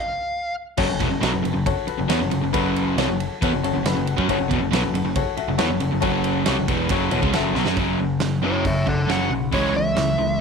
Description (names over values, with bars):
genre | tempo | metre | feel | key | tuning
classic rock | 137 BPM | 4/4 | straight | F# minor | A4 = 439 Hz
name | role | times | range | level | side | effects
fuzz lead guitar | melody | 0.0-0.5, 8.4-10.4 s | E4 to F#5 | -24 LUFS | equal | distortion, slapback echo
bright baby grand piano | accompaniment | 0.8-7.7 s | F#4 to A5 | -26 LUFS | left 14 dB | none
crunchy overdriven guitar | riff | 0.8-10.4 s | E2 to C#4 | -25 LUFS | right 13 dB | none
distorted electric guitar | riff | 0.8-10.4 s | E2 to C#4 | -25 LUFS | left 12 dB | distortion
growling picked electric bass | bass | 0.8-10.4 s | E1 to F#2 | -28 LUFS | equal | overdrive
huge arena drum kit | drums | 0.8-10.1 s | crash cymbal, hi-hat, kick drum, ride cymbal, snare drum | -26 LUFS | right 3 dB | none
room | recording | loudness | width
light reverb, studio ambience | 1960s-style stereo with parts hard left and right | -19 LUFS | side -5 dB against mid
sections
0.8-7.8 A section; 7.8-10.4 B section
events
stop 0.0-0.8; grand piano fill 3.4-4.3; drum fill 7.6; lead electric guitar solo 7.8-10.4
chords
0.0 N.C.; 0.8 F#m; 7.8 F#5; 9.5 C#m